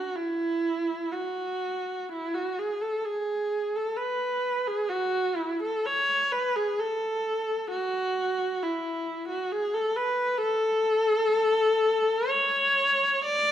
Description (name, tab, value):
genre	classical, free, expressive piece for unaccompanied viola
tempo	65 BPM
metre	3/4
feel	uneven beats, rubato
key	A major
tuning	A4 = 440 Hz
part	warm viola	solo	0.0-13.5 s	E4 to D5	-25 LUFS	equal	none
room	moderate recital hall reverb, RT60 1.4 s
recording	none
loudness	-25 LUFS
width	side -10 dB against mid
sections	0.0-13.5 A section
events	none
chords	none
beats	0.17 1.17 | 2.13 3.07 3.99 | 4.91 5.84 6.78 | 7.71 8.62 9.51 | 10.43 11.34 12.29 | 13.25